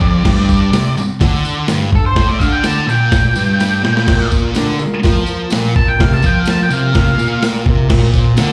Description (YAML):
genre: garage rock duo or trio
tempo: 126 BPM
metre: 4/4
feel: straight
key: unclear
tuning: A4 = 440 Hz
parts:
  - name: octave-fuzz lead guitar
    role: melody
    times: 0.0-7.4 s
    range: A4 to A5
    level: -21 LUFS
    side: equal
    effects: distortion, slapback echo, digital delay
  - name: thick fuzz guitar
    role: riff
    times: 0.0-8.5 s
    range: F2 to F3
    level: -17 LUFS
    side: equal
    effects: distortion, slapback echo
  - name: breakbeat sampler-style drum kit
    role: drums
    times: 0.0-8.5 s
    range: crash cymbal, hi-hat, kick drum, snare drum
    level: -17 LUFS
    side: equal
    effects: none
  - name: tambourine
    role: percussion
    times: 0.5-8.5 s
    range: none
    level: -34 LUFS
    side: equal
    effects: none
  - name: combo organ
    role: sustained chords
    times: 4.1-8.5 s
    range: Bb3 to C5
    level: -26 LUFS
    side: equal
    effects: none
room: light reverb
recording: live gig heard through the venue's PA, club reverb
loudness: -14 LUFS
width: mono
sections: 0.0-8.5 A section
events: lead electric guitar solo 0.0-8.5; drum fill 3.6-4.1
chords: 0.2 G5; 4.1 Bb5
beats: | 0.25 0.73 1.21 1.69 | 2.17 2.65 3.13 3.60 | 4.08 4.56 5.04 5.52 | 6.00 6.47 6.95 7.43 | 7.90 8.38